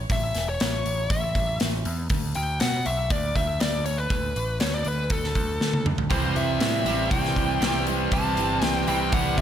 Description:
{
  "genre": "quiet-loud alternative rock",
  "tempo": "120 BPM",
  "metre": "4/4",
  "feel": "straight",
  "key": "unclear",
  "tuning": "A4 = 444 Hz",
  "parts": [
    { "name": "growling picked electric bass", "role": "bass", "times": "0.0-9.4 s", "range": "E1 to B2", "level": "-28 LUFS", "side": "equal", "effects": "overdrive" },
    { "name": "bluesy overdriven lead guitar", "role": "melody", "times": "0.1-9.4 s", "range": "A4 to A5", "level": "-28 LUFS", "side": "left 2 dB", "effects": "distortion, slapback echo" },
    { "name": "big rock drum kit", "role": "drums", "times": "0.1-9.4 s", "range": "hi-hat, kick drum, snare drum, toms", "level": "-27 LUFS", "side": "equal", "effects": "none" },
    { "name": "picked steel-string acoustic guitar", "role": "arpeggios", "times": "6.1-9.4 s", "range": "C3 to G4", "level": "-30 LUFS", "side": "right 7 dB", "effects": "slapback echo, tape echo" },
    { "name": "biting overdriven guitar", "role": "riff", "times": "6.1-9.4 s", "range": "C3 to C4", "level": "-29 LUFS", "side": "left 12 dB", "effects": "spring reverb, slapback echo" },
    { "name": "crunchy overdriven guitar", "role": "riff", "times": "6.1-9.4 s", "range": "C3 to C4", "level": "-28 LUFS", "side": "right 12 dB", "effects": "slapback echo" }
  ],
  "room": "light reverb, small room ambience",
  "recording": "none",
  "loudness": "-22 LUFS",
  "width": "side -10 dB against mid",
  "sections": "0.0-9.4 A section",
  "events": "drum fill 5.6-6.1",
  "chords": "0.0 A; 2.1 D5; 6.1 C"
}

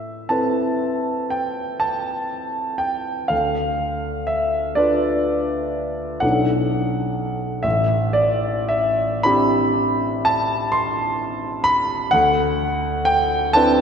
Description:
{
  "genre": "classical, impressionist solo piano",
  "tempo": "35-44 BPM (dotted quarters)",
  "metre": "9/8",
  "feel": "rubato",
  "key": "A minor",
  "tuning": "A4 = 440 Hz",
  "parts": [
    { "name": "clear grand piano", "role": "solo", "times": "0.0-13.8 s", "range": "A1 to C6", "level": "-18 LUFS", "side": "equal", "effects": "none" }
  ],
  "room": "wet concert hall reverb, RT60 2.5 s",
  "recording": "minimal, uncompressed stereo recording",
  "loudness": "-18 LUFS",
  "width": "side -7 dB against mid",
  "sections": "0.0-13.8 A section",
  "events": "none",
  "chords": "0.0 Amadd9; 3.3 Dm6; 6.2 Bm11; 7.6 Am11; 12.1 D13"
}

